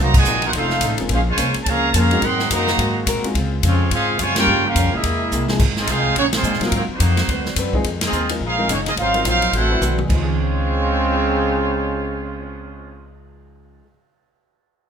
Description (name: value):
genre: jazz, big band swing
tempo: 214 BPM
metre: 4/4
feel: swing 60% on 8ths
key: Db major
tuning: A4 = 441 Hz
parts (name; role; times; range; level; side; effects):
- brilliant trumpet section; melody; 0.0-13.1 s; Gb3 to C6; -21 LUFS; right 2 dB; none
- mellow trombone section; second line; 0.0-13.1 s; Bb2 to G4; -24 LUFS; right 2 dB; none
- picked acoustic archtop guitar; accompaniment; 0.0-13.9 s; F2 to C5; -29 LUFS; left 4 dB; none
- clear trombone section; sustained chords; 0.0-5.6 s; C3 to Gb4; -32 LUFS; left 2 dB; none
- upright bass; bass; 0.0-13.8 s; Eb1 to Bb2; -22 LUFS; equal; none
- swinging big-band drum kit; drums; 0.1-12.3 s; crash cymbal, cymbal swell, hi-hat, kick drum, ride cymbal, snare drum, toms; -22 LUFS; equal; none
- warm concert grand piano; accompaniment; 1.0-13.9 s; Db3 to B4; -27 LUFS; left 2 dB; none
room: moderate large studio reverb, RT60 0.8 s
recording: minimal, uncompressed stereo recording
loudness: -16 LUFS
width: side -7 dB against mid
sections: 0.0-5.6 A section; 5.6-10.1 B section; 10.1-12.3 C section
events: band accent 0.1, 4.3, 6.3, 8.0; drum fill 5.3, 9.8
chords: 0.0 Cm7b5; 0.5 F7b13; 1.1 Bbm9; 2.2 Ab9; 3.4 Dbmaj7; 4.5 Gm7b5; 5.0 C7alt; 5.6 Fm7; 6.2 Bb7sus4; 6.7 Ab13; 7.3 D6; 7.8 Fm7; 8.4 Bb7sus4; 9.0 Ab13; 9.5 D13; 10.1 Dbmaj7